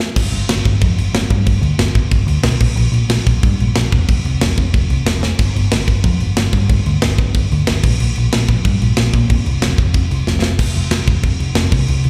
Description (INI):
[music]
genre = punk rock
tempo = 184 BPM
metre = 4/4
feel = straight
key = unclear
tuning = A4 = 441 Hz
[part]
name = tight metal drum kit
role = drums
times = 0.0-12.1 s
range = crash cymbal, kick drum, snare drum, splash cymbal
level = -19 LUFS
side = equal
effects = none
[part]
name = hollow-body short-scale picked electric bass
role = bass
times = 0.2-12.1 s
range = E1 to Bb2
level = -18 LUFS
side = equal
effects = none
[sound]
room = little or no reverb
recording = live gig heard through the venue's PA, recital hall reverb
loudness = -15 LUFS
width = mono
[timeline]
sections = 0.2-10.6 A section; 10.6-12.1 B section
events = break 0.0; drum fill 0.0, 5.2, 10.3-10.6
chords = none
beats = | 0.16 0.49 0.81 1.14 | 1.47 1.79 2.12 2.44 | 2.77 3.10 3.42 3.75 | 4.08 4.41 4.73 5.06 | 5.39 5.71 6.04 6.37 | 6.69 7.02 7.35 7.67 | 8.00 8.32 8.65 8.97 | 9.30 9.62 9.94 10.27 | 10.59 10.91 11.24 11.56 | 11.88